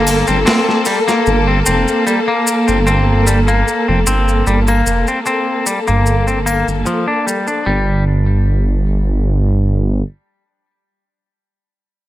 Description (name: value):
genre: trip hop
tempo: 75 BPM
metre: 4/4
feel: straight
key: G minor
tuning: A4 = 440 Hz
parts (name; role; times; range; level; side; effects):
- clear symphonic string section; sustained chords; 0.0-7.7 s; Bb3 to A4; -18 LUFS; equal; none
- clean electric guitar; arpeggios; 0.0-8.0 s; F3 to D4; -17 LUFS; left 2 dB; low-pass filter, digital delay
- dark detuned saw bass; bass; 0.0-10.0 s; F1 to G1; -14 LUFS; right 1 dB; none
- boom bap sampler-style drum kit; drums; 0.1-1.3 s; hi-hat, snare drum; -17 LUFS; equal; overdrive
- triangle and maracas; percussion; 0.1-7.6 s; none; -22 LUFS; left 1 dB; none
room: light reverb, digital ambience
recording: none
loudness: -12 LUFS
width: side -14 dB against mid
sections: 0.0-7.7 A section; 7.7-10.9 B section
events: filter sweep on detuned saw bass 0.0-7.7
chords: 0.0 Gmadd9; 7.7 N.C.